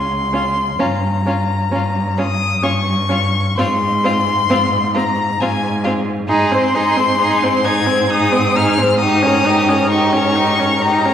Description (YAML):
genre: classical, slow romantic movement for string quartet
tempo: 66 BPM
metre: 3/4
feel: rubato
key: F minor, Ab major from 6.3 s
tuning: A4 = 438 Hz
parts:
  - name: rich violin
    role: melody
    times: 0.0-11.1 s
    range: Ab5 to Ab6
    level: -18 LUFS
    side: left 4 dB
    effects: none
  - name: warm cello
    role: bass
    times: 0.0-11.1 s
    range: Db2 to Ab2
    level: -20 LUFS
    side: right 1 dB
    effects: none
  - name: rich violin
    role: second line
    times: 0.3-11.1 s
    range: F4 to C5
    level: -22 LUFS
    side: left 2 dB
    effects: none
  - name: warm viola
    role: accompaniment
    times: 0.3-11.1 s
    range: C4 to Eb4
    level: -19 LUFS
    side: right 1 dB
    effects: none
room: wet scoring stage reverb, RT60 1.6 s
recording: recorded in a church or concert hall, vinyl crackle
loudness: -13 LUFS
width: side -9 dB against mid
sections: 0.0-11.1 A section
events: none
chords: 0.0 N.C.; 0.8 Gdim; 3.6 Fm/Ab (rootless); 6.3 Ab; 9.0 Eb7/Ab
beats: | 0.81 1.73 2.63 | 3.57 4.50 5.40 | 6.28 7.19 8.11 | 9.00 9.91 10.82